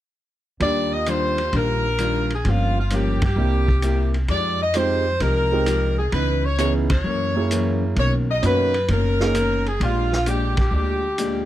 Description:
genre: jazz, big band swing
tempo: 130 BPM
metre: 4/4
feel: swing 68% on 8ths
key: Eb major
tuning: A4 = 440 Hz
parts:
  - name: edgy saxophone section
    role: melody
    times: 0.6-11.5 s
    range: F4 to Eb5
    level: -23 LUFS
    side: left 1 dB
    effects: none
  - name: vintage hollow-body jazz guitar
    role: accompaniment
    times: 0.6-11.5 s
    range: Gb2 to G4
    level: -27 LUFS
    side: left 3 dB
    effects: none
  - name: warm concert grand piano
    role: accompaniment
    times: 0.6-9.3 s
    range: Ab3 to Ab4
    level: -26 LUFS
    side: right 6 dB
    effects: none
  - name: upright bass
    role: bass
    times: 0.6-11.5 s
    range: F#1 to G2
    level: -22 LUFS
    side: equal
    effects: none
  - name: vintage drum kit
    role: drums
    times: 0.6-11.3 s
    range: hi-hat, kick drum, ride cymbal, snare drum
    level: -28 LUFS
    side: equal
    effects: none
room: small room ambience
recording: dry, close 1970s-style studio recording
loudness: -18 LUFS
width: side -13 dB against mid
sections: 0.6-11.5 A section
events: band accent 3.1, 6.8, 10.5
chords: 0.6 Ebmaj9; 2.4 Gm7b5; 3.4 C7; 4.3 Fm9; 6.1 Dbm9; 7.0 Gb7; 8.0 Bmaj9; 9.8 Bb6

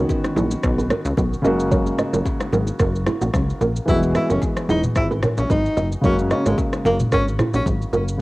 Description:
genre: afrobeats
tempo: 111 BPM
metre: 4/4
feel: swing 55% on 16ths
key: F# mixolydian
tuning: A4 = 441 Hz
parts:
  - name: dark concert grand piano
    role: accompaniment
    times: 0.0-8.2 s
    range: C#3 to F#4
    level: -24 LUFS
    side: equal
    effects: cassette tape
  - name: flamenco guitar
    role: riff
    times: 0.0-8.1 s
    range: D#4 to D#5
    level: -24 LUFS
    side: right 2 dB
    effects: cassette tape, tape echo
  - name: plucky analog bass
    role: bass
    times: 0.0-8.2 s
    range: E1 to C#2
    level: -23 LUFS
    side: equal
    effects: none
  - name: afro-pop drum kit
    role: drums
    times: 0.1-8.2 s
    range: kick drum, rim click, shaker, toms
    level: -24 LUFS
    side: equal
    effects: cassette tape
  - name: bongos and congas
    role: percussion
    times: 0.1-8.1 s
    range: none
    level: -30 LUFS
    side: left 3 dB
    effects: none
  - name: warm tenor saxophone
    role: melody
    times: 3.9-7.6 s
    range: G#3 to E4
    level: -24 LUFS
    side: equal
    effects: cassette tape
room: small room ambience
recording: home recording on cassette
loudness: -17 LUFS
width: side -20 dB against mid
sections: 0.0-8.2 A section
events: none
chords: 0.0 Badd9; 1.4 F#add9; 3.9 Eadd9; 6.0 F#add9

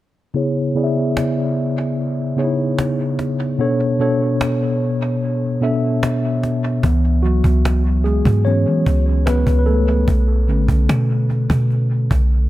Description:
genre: contemporary R&B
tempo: 74 BPM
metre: 4/4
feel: straight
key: unclear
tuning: A4 = 436 Hz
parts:
  - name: mellow tine electric piano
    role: accompaniment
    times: 0.3-12.5 s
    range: B2 to E5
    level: -18 LUFS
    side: left 1 dB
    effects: medium stereo tremolo, low-pass filter, dub echo
  - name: cajon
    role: drums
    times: 1.2-12.3 s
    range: none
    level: -26 LUFS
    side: equal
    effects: dub echo
  - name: clean 808-style bass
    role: bass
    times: 6.8-12.5 s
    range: A1 to E3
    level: -16 LUFS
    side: equal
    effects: none
room: light reverb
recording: echo-heavy mix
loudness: -15 LUFS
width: side -15 dB against mid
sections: 0.3-6.8 A section; 6.8-12.5 B section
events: filter sweep on tine electric piano 0.3-6.8; kick muted 3.6-6.8; tine electric piano solo 6.8-12.5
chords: 0.3 C#m7; 3.6 Bm7; 6.8 C#m7; 10.1 Bm7

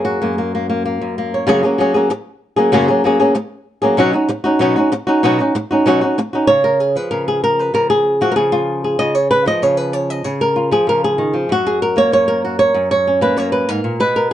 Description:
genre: flamenco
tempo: 192 BPM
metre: 4/4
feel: straight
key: F# major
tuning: A4 = 440 Hz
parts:
  - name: flamenco guitar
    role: solo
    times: 0.0-14.3 s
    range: F#2 to D#5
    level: -13 LUFS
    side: equal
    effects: none
room: light reverb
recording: dark, warm production, nothing above 11.0 kHz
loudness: -13 LUFS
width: side -11 dB against mid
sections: 0.0-1.5 A section; 1.5-6.5 B section; 6.5-14.3 C section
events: none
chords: 0.0 F#add9; 4.0 Badd9; 6.5 C#; 11.5 F#

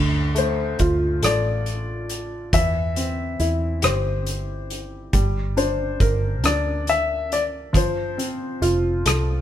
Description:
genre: six-eight pop ballad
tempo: 46 BPM (dotted quarters)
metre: 6/8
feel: straight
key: D minor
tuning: A4 = 439 Hz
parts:
  - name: felt-muted upright piano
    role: accompaniment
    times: 0.0-9.4 s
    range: D3 to Bb4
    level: -26 LUFS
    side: equal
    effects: none
  - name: vintage muted fingered electric bass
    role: bass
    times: 0.0-9.4 s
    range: F1 to E2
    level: -24 LUFS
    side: right 1 dB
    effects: none
  - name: clear grand piano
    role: melody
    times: 0.4-9.0 s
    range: C5 to E5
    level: -26 LUFS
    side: left 5 dB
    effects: none
  - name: loose indie drum kit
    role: drums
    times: 0.4-9.3 s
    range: hi-hat, kick drum, rim click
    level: -24 LUFS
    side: equal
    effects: none
room: light reverb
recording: band playing live in one room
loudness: -20 LUFS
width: side -11 dB against mid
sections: 0.0-9.4 A section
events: none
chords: 0.0 Dm; 2.5 C/E; 5.1 Gm; 7.7 F

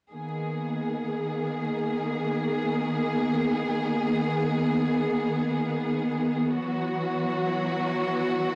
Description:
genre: trip hop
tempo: free time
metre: none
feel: none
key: G# minor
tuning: A4 = 440 Hz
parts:
  - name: dark studio string section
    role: sustained chords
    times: 0.1-8.6 s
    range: D#3 to G#4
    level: -27 LUFS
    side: equal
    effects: none
room: light reverb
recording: dry, gritty hardware recording, vinyl crackle, nothing above 10.5 kHz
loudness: -27 LUFS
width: mono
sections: 0.1-8.6 A section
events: none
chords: 0.1 G#madd9; 6.5 Esus2

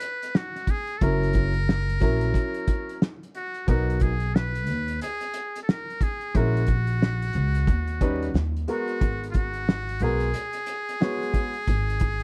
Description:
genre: hip hop, jazz-hop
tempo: 90 BPM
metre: 4/4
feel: swing 61% on 16ths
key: G# minor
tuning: A4 = 438 Hz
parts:
  - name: trumpet with metal mute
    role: melody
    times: 0.0-12.2 s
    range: E#4 to B4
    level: -33 LUFS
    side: equal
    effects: none
  - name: cloth-damped thuddy drum kit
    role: drums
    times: 0.0-12.2 s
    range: hi-hat, kick drum, snare drum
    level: -27 LUFS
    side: equal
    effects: none
  - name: bright upright piano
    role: accompaniment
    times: 1.0-11.5 s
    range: F#3 to C#5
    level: -31 LUFS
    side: equal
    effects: none
  - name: upright bass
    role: bass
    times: 1.0-12.2 s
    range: F#1 to D#2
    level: -28 LUFS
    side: equal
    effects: none
room: studio ambience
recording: vinyl crackle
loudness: -25 LUFS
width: mono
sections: 0.0-12.2 A section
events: none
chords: 0.0 C#7(no3) (rootless); 1.0 F#7; 3.7 Bmaj7; 6.3 A#m7b5; 7.7 D#7alt; 9.0 G#m9

